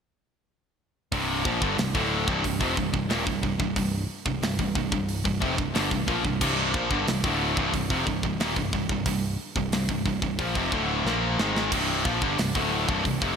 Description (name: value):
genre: heavy metal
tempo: 91 BPM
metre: 4/4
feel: straight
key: C minor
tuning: A4 = 439 Hz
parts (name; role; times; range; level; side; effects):
- distorted electric guitar; riff; 1.1-13.4 s; C2 to Bb3; -28 LUFS; left 10 dB; overdrive
- heavy high-gain guitar; riff; 1.1-13.4 s; C2 to Bb3; -28 LUFS; right 8 dB; distortion
- modern bright picked electric bass; bass; 1.1-13.4 s; C1 to Bb1; -33 LUFS; equal; none
- tight metal drum kit; drums; 1.1-13.4 s; crash cymbal, hi-hat, kick drum, snare drum; -30 LUFS; equal; gated reverb
room: moderate lush hall reverb, RT60 2.7 s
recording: bright 1980s-style digital production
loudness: -23 LUFS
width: side -6 dB against mid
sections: 1.1-13.4 A section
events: drum fill 11.1-11.7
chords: 1.1 Cm